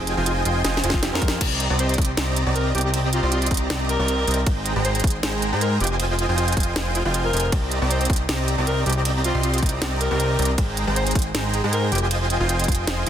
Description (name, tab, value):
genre	future bass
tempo	157 BPM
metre	4/4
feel	swing 53% on 16ths, half-time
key	C minor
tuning	A4 = 440 Hz
part	felt-muted upright piano	accompaniment	0.0-1.4 s	F3 to Bb4	-31 LUFS	right 2 dB	sidechain pumping, digital delay
part	dense compressed supersaw	riff	0.0-13.1 s	Ab3 to C6	-24 LUFS	right 1 dB	cassette tape, sidechain pumping, digital delay
part	fat analog bass	bass	0.0-13.1 s	F1 to Ab2	-24 LUFS	equal	sidechain pumping
part	trap drum kit	drums	0.1-13.1 s	crash cymbal, hi-hat, ride cymbal, snare drum	-27 LUFS	right 1 dB	none
part	warm alto saxophone	melody	0.2-13.1 s	F4 to C5	-29 LUFS	left 1 dB	sidechain pumping, digital delay
part	electronic kick drum	drums	0.9-12.8 s	none	-22 LUFS	equal	none
room	light reverb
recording	dense, heavily limited modern master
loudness	-19 LUFS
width	side -10 dB against mid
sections	0.0-1.4 A section; 1.4-13.1 A section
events	drop 0.0-1.4, 1.4-13.1; drum fill 0.6-1.4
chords	0.0 Fm7; 1.4 Cm9; 4.5 Abmaj7; 5.8 Fm7; 7.5 Cm9; 10.6 Abmaj7; 11.9 Fm7